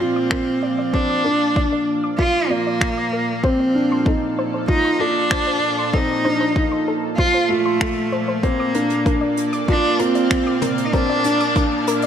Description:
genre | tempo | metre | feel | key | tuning
piano and strings electronica | 96 BPM | 4/4 | straight | Bb major | A4 = 440 Hz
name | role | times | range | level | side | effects
rich cello | melody | 0.0-11.9 s | A3 to F4 | -20 LUFS | right 1 dB | digital delay
lush unison pad | sustained chords | 0.0-12.1 s | Bb2 to F5 | -27 LUFS | right 2 dB | chorus, sidechain pumping
felt-muted upright piano | riff | 0.0-12.1 s | C4 to F4 | -22 LUFS | equal | digital delay
soft round pluck | arpeggios | 0.2-12.1 s | A4 to D6 | -29 LUFS | left 2 dB | chorus, sidechain pumping, digital delay
electronic kick drum | drums | 0.3-11.7 s | none | -21 LUFS | equal | overdrive
jazz brush drum kit | drums | 0.3-12.1 s | finger snaps, hi-hat, toms | -27 LUFS | equal | none
riser | sound effects | 10.2-12.1 s | none | -35 LUFS | right 1 dB | none
room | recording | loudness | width
moderate lush hall reverb, RT60 2.0 s, small room ambience | none | -17 LUFS | side -8 dB against mid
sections
0.0-12.1 A section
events
build-up 0.0-12.1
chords
0.0 Bb; 3.4 F/Bb; 8.4 Bb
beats
0.32 | 0.94 1.56 2.19 2.81 | 3.44 4.07 4.69 5.32 | 5.94 6.57 7.19 7.82 | 8.44 9.06 9.69 10.31 | 10.94 11.56

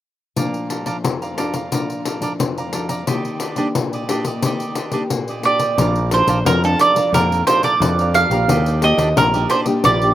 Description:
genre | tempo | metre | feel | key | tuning
samba and choro | 89 BPM | 4/4 | straight | Bb major | A4 = 440 Hz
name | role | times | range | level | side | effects
cavaquinho | accompaniment | 0.4-10.1 s | D4 to Bb5 | -27 LUFS | right 4 dB | none
nylon-string guitar | accompaniment | 0.4-10.1 s | F2 to G4 | -24 LUFS | left 2 dB | none
pandeiro | percussion | 0.4-10.1 s | none | -22 LUFS | left 4 dB | slapback echo
mandolin | melody | 5.5-10.1 s | A4 to F5 | -16 LUFS | right 3 dB | none
growling fingered electric bass | bass | 5.8-10.1 s | Bb1 to F2 | -19 LUFS | equal | overdrive
room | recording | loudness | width
little or no reverb | recorded outdoors, with no room sound | -16 LUFS | side -13 dB against mid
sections
0.4-5.8 A section; 5.8-10.1 B section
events
none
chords
0.4 Bbmaj7; 3.1 Ebmaj7; 5.8 Bbmaj7; 8.5 Ebmaj7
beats
| 0.36 1.04 1.72 2.40 | 3.07 3.75 4.42 5.10 | 5.78 6.46 7.13 7.81 | 8.48 9.16 9.84

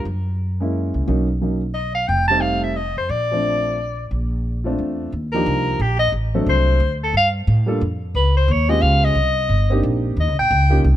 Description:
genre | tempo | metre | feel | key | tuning
jazz, small-group swing and bop | 178 BPM | 3/4 | swing 62% on 8ths | Bb major | A4 = 440 Hz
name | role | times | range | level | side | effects
mellow soprano saxophone | melody | 0.0-10.8 s | G4 to A5 | -20 LUFS | left 1 dB | none
dark baby grand piano | accompaniment | 0.0-10.8 s | F3 to A4 | -23 LUFS | equal | none
upright bass | bass | 0.0-11.0 s | F1 to A2 | -20 LUFS | equal | none
room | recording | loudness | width
little or no reverb | close, detailed microphones | -17 LUFS | side -12 dB against mid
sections
0.0-5.1 A section; 5.1-11.0 B section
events
none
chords
0.1 Gb7; 1.1 Bmaj7; 2.1 F7; 3.1 Bbmaj9; 5.1 Ebmaj9; 6.1 D7; 7.1 Gm9; 8.1 Db7#11; 9.2 Cm7; 10.2 Eb9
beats
| 0.06 0.40 0.74 | 1.07 1.41 1.75 | 2.08 2.42 2.76 | 3.10 3.43 3.77 | 4.11 4.44 4.78 | 5.12 5.46 5.79 | 6.13 6.46 6.80 | 7.14 7.47 7.81 | 8.15 8.48 8.82 | 9.16 9.49 9.83 | 10.17 10.50 10.84

